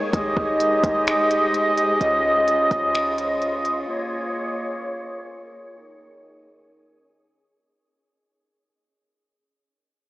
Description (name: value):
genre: hip hop, atmospheric cloud-rap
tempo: 128 BPM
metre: 4/4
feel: half-time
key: unclear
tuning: A4 = 440 Hz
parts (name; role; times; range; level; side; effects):
- wind-like tuned noise texture; texture; 0.0-7.6 s; Ab3 to Eb5; -32 LUFS; left 1 dB; built-in reverb
- warm woodwind section; sustained chords; 0.1-7.6 s; Db3 to Eb5; -20 LUFS; equal; sidechain pumping, low-pass filter
- clean 808-style bass; bass; 0.1-3.8 s; Ab1 to Db2; -36 LUFS; equal; none
- smooth R&B drum kit; drums; 0.1-3.8 s; finger snaps, hi-hat, kick drum; -28 LUFS; equal; overdrive
room: wet huge ambient reverb, RT60 7.3 s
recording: dreamy mix soaked in reverb, AM radio sound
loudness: -19 LUFS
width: side -18 dB against mid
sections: 0.1-7.6 A section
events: fade-out 0.1-7.6; filter sweep on woodwind section 0.1-7.6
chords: 0.1 Abmaj7; 2.0 Dbmaj7; 3.9 Bbm7; 5.8 Eb7sus4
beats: | 0.13 0.60 1.07 1.54 | 2.01 2.48 2.95 3.41 | 3.88 4.35 4.82 5.29 | 5.76 6.23 6.70 7.16